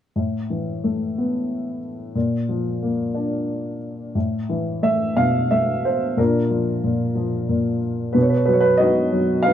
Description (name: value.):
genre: classical, lyrical solo piano.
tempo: 91 BPM.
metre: 3/4.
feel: rubato.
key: unclear.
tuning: A4 = 442 Hz.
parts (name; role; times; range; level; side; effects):
dark upright piano; solo; 0.2-9.5 s; A2 to F5; -19 LUFS; equal; none.
room: moderate booth ambience, RT60 0.2 s.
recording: none.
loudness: -19 LUFS.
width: side -10 dB against mid.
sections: 0.2-4.2 A section; 4.2-9.5 B section.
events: none.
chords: 0.2 Asus2; 2.2 Bb; 4.2 Asus2; 6.2 Bb; 8.2 B.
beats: | 0.15 0.83 1.50 | 2.15 2.81 3.48 | 4.16 4.83 5.51 | 6.18 6.84 7.50 | 8.15 8.80 9.46.